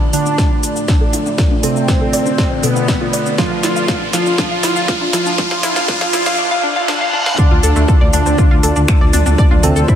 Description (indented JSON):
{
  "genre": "melodic techno",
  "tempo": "120 BPM",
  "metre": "4/4",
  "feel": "straight",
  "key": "D dorian",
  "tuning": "A4 = 441 Hz",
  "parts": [
    { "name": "wide unison lead", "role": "melody", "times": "0.0-10.0 s", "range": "B3 to F4", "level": "-20 LUFS", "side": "equal", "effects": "analog chorus, sidechain pumping, diffuse ambient delay" },
    { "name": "glassy wavetable pluck", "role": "second line", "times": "0.0-10.0 s", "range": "B2 to F3", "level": "-24 LUFS", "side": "right 2 dB", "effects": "chorus, sidechain pumping, tape echo" },
    { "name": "dark analog pad", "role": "sustained chords", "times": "0.0-10.0 s", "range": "A3 to D5", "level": "-24 LUFS", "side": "right 1 dB", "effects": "chorus, vintage 12-bit sampler grit, sidechain pumping" },
    { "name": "analog pluck", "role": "arpeggios", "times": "0.0-9.9 s", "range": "A3 to D6", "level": "-21 LUFS", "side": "left 1 dB", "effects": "chorus, sidechain pumping, tape echo" },
    { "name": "analog drone", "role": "drone", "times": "0.3-6.4 s", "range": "D3 to A3", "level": "-29 LUFS", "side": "left 2 dB", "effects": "none" },
    { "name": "riser and reverse cymbal", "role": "sound effects", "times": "0.0-7.4 s", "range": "none", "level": "-24 LUFS", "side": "equal", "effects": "none" },
    { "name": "techno drum kit", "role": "drums", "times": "0.1-10.0 s", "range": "finger snaps, hi-hat, shaker, snare drum, toms", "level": "-21 LUFS", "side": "equal", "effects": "high-pass filter on snare, sidechain pumping on perc, high-pass filter on perc, sidechain pumping on hats, high-pass filter on hats, sidechain pumping on toms, high-pass filter on toms, high-pass filter on room" },
    { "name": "electronic kick drum", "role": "drums", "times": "0.4-10.0 s", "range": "none", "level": "-14 LUFS", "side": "equal", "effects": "none" },
    { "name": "dark detuned saw bass", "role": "bass", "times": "7.5-9.8 s", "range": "D2", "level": "-14 LUFS", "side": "equal", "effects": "sidechain pumping" }
  ],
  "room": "moderate huge ambient reverb, RT60 7.0 s",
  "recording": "dreamy mix soaked in reverb, high-pass filter",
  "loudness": "-12 LUFS",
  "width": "side -9 dB against mid",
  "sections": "0.0-7.4 A section; 7.4-10.0 B section",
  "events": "build-up 0.0-7.4; drum fill 0.0-6.4, 6.9-7.4; riser 0.0-6.4; filter sweep on synth arpeggio sound 0.0-7.4; filter sweep on analog synth pad 0.0-7.4; filter sweep 0.0-7.4; reverse cymbal 6.4-7.4; drop 7.4-10.0",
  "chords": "0.0 Dm",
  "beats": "0.38 0.88 | 1.38 1.88 2.38 2.88 | 3.38 3.88 4.38 4.88 | 5.38 5.88 6.38 6.88 | 7.38 7.88 8.38 8.88 | 9.38 9.88"
}